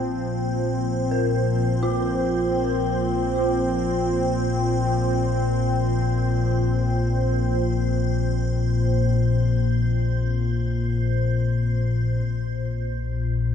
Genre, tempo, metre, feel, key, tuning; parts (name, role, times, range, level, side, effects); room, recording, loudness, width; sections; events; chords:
dark ambient drone; free time; A4 = 440 Hz
sweeping resonant pad; sustained chords; 0.0-12.3 s; Bb2 to C4; -26 LUFS; equal; chorus
deep rumbling drone; drone; 0.0-13.5 s; Bb1 to Bb2; -23 LUFS; left 3 dB; built-in reverb, lush chorus
icy glass pad; texture; 0.0-12.3 s; C5; -32 LUFS; right 5 dB; chorus, built-in reverb, phaser
dark detuned synth bell; arpeggios; 1.1-12.3 s; F4 to Bb4; -31 LUFS; right 1 dB; chorus, phaser, diffuse ambient delay
wet huge ambient reverb, RT60 8.5 s; dreamy mix soaked in reverb, cassette tape, small room ambience; -20 LUFS; side -8 dB against mid
0.0-12.3 A section; 12.3-13.5 B section
fade-in on synth drone 0.0-12.3; fade-in on ambient pad 0.0-12.3; fade-out on analog synth pad 0.0-12.3
0.0 Bbsus2; 12.3 N.C.